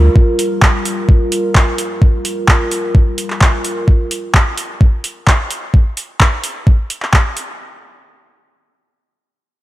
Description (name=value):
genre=acid house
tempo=129 BPM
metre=4/4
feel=straight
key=G minor pentatonic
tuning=A4 = 440 Hz
part: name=dark analog pad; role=sustained chords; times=0.0-3.8 s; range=G3 to Bb4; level=-20 LUFS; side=equal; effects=wide subtle chorus, sidechain pumping
part: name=electronic kick drum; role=drums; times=0.2-7.2 s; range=none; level=-10 LUFS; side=equal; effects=none
part: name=booming analog drum machine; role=drums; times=0.4-7.5 s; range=handclaps, hi-hat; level=-17 LUFS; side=equal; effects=none
room=light reverb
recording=none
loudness=-12 LUFS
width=side -16 dB against mid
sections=0.0-7.6 A section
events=none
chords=0.0 Gm7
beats=| 0.16 0.62 1.09 1.55 | 2.02 2.48 2.95 3.41 | 3.88 4.34 4.81 5.27 | 5.74 6.20 6.67 7.13